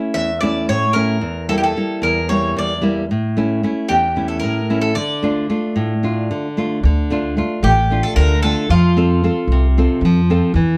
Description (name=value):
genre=greek folk, Greek bouzouki band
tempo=224 BPM (eighths)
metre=7/8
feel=straight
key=D harmonic minor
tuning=A4 = 439 Hz
part: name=nylon-string guitar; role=accompaniment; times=0.0-10.8 s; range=E2 to A4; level=-21 LUFS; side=equal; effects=none
part: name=Greek bouzouki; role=melody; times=0.1-10.3 s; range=F4 to E5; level=-22 LUFS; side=equal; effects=none
part: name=upright bass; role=bass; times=6.8-10.8 s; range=A1 to F2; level=-18 LUFS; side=equal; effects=none
room=light reverb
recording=none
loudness=-17 LUFS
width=mono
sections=0.0-6.8 A section; 6.8-10.8 A section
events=none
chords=0.0 A; 1.2 Edim; 3.1 A; 5.0 Dm; 8.7 F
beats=0.13 0.40 0.67 0.94 | 1.21 1.48 1.75 2.02 2.29 2.55 2.82 | 3.09 3.36 3.63 3.90 4.16 4.43 4.70 | 4.97 5.24 5.50 5.77 6.04 6.30 6.57 | 6.84 7.11 7.37 7.64 7.90 8.17 8.44 | 8.70 8.97 9.23 9.50 9.76 10.03 10.29 | 10.56